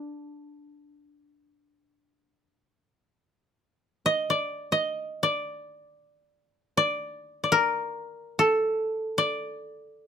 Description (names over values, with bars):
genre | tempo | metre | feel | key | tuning
japanese traditional, Japanese chamber music | free time | none | none | D miyako bushi | A4 = 440 Hz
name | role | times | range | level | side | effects
koto | solo | 0.0-10.1 s | D4 to Eb5 | -24 LUFS | equal | none
room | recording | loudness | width
light reverb | close, detailed microphones | -24 LUFS | side -8 dB against mid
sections
0.0-3.3 A section; 3.3-10.1 A section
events
none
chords
none